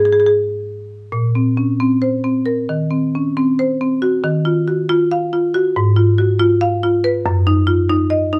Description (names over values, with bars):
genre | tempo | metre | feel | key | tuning
classical, contemporary piece for solo marimba | 274 BPM (eighths) | 7/8 | uneven beats, rubato | unclear | A4 = 440 Hz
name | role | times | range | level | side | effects
marimba with medium hard mallets | solo | 0.0-8.4 s | Gb2 to F5 | -16 LUFS | equal | none
room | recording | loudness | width
light reverb | dark, warm production, nothing above 10.9 kHz | -16 LUFS | mono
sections
0.0-1.1 A section; 1.1-8.4 B section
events
none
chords
0.0 Absus2; 1.1 Bbmadd9; 2.7 Ebm6; 4.2 Ebmadd9; 5.8 Abm6; 7.3 Gb5